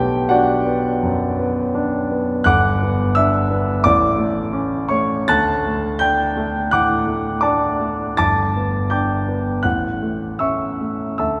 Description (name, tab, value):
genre	classical, romantic character piece for solo piano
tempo	74-89 BPM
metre	4/4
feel	rubato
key	D major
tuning	A4 = 438 Hz
part	warm grand piano	solo	0.0-11.4 s	G1 to A6	-19 LUFS	equal	none
room	wet church reverb, RT60 3.5 s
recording	recorded in a church or concert hall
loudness	-19 LUFS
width	mono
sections	0.0-11.4 A section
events	none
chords	0.0 Bm; 2.5 Gmaj7; 3.8 A; 5.3 D; 8.2 G; 9.6 A